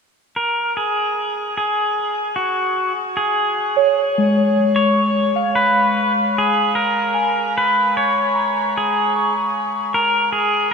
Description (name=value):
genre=ambient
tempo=75 BPM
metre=4/4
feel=straight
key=G# dorian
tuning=A4 = 443 Hz
part: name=pedal steel guitar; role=melody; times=0.4-10.7 s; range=F#4 to C#5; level=-18 LUFS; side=equal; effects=shimmer reverb, ping-pong delay
part: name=muted felt-like synth keys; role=arpeggios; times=3.8-10.7 s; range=G#3 to C#6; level=-19 LUFS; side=equal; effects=chorus, shimmer reverb, ping-pong delay
room=wet cathedral reverb, RT60 5.7 s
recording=in a vast, echoing space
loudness=-16 LUFS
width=side -5 dB against mid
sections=0.0-10.7 A section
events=none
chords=0.0 G#sus4; 6.4 A#m7/G#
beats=0.76 1.56 2.36 | 3.16 3.96 4.76 5.56 | 6.36 7.16 7.96 8.76 | 9.56 10.36